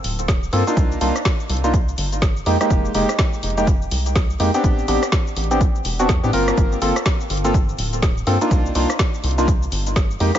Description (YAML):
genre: deep house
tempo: 124 BPM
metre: 4/4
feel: swing 60% on 16ths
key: unclear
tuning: A4 = 441 Hz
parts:
  - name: rubbery square bass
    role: bass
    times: 0.0-10.3 s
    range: D1 to A2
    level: -23 LUFS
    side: equal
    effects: tube saturation, sidechain pumping
  - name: deep house drum kit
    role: drums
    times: 0.0-10.4 s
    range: hi-hat, rim click, shaker, snare drum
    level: -26 LUFS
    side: equal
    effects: none
  - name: electronic kick drum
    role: drums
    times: 0.3-10.1 s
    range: none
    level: -18 LUFS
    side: equal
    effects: none
  - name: percussive organ stab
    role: stabs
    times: 0.5-10.4 s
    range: Ab3 to Bb4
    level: -20 LUFS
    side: equal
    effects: lush chorus, sidechain pumping, tape echo
room: light reverb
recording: echo-heavy mix, nothing above 7.6 kHz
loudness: -16 LUFS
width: side -10 dB against mid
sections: 0.0-10.4 A section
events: none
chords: 0.0 Gm11; 0.8 Cm11; 2.5 Fm11; 4.6 Am11; 6.6 Gm11; 8.5 Cm11